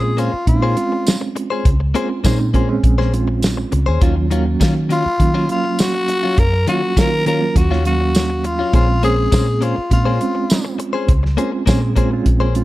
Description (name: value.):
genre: straight-eighth soul blues.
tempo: 102 BPM.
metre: 4/4.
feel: straight.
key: Bb minor.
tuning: A4 = 440 Hz.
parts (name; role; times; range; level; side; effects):
growling tenor saxophone; melody; 0.0-1.3, 4.9-10.8 s; F4 to Bb4; -20 LUFS; left 1 dB; none.
reed electric piano; accompaniment; 0.0-12.6 s; Gb3 to F5; -22 LUFS; right 5 dB; fast tremolo.
direct-recorded clean electric guitar; stabs; 0.0-12.6 s; Eb3 to C5; -24 LUFS; left 6 dB; none.
vintage muted fingered electric bass; bass; 0.0-12.6 s; Bb1 to Eb3; -18 LUFS; equal; none.
warm soul drum kit; drums; 0.2-12.6 s; hi-hat, kick drum, snare drum, tambourine; -17 LUFS; equal; none.
room: small room ambience.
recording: none.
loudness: -14 LUFS.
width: side -17 dB against mid.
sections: 0.0-12.6 A section.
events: none.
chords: 0.0 Bbm9; 4.0 Ebm9; 8.7 Bbm9.